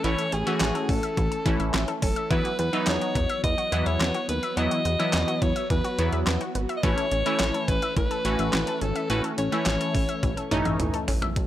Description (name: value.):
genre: synth-pop.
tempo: 106 BPM.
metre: 4/4.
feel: straight.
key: unclear.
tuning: A4 = 440 Hz.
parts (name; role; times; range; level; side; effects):
breathy alto saxophone; melody; 0.0-10.5 s; G#4 to D#5; -29 LUFS; left 1 dB; tape echo.
funky polysynth comp; accompaniment; 0.0-11.0 s; E3 to F#4; -29 LUFS; equal; chorus.
string machine, violas; sustained chords; 0.0-11.5 s; E3 to F#4; -34 LUFS; equal; ensemble chorus.
analog pluck; arpeggios; 0.0-11.3 s; E3 to E5; -34 LUFS; left 1 dB; chorus.
chorused synth bass; bass; 0.0-11.5 s; F#1 to E2; -28 LUFS; equal; tube saturation.
detuned 8-bit digital drum machine; drums; 0.0-11.5 s; handclaps, hi-hat, kick drum, snare drum, toms; -28 LUFS; equal; overdrive.
room: digital ambience.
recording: dry, gritty hardware recording, transformer saturation.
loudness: -22 LUFS.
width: side -13 dB against mid.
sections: 0.0-11.4 A section.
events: drum fill 10.2-11.4.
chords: 0.0 A; 2.3 Esus2; 6.8 A.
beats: | 0.04 0.61 1.17 1.74 | 2.31 2.87 3.44 4.00 | 4.57 5.14 5.70 6.27 | 6.83 7.40 7.97 8.53 | 9.10 9.66 10.23 10.80 | 11.36.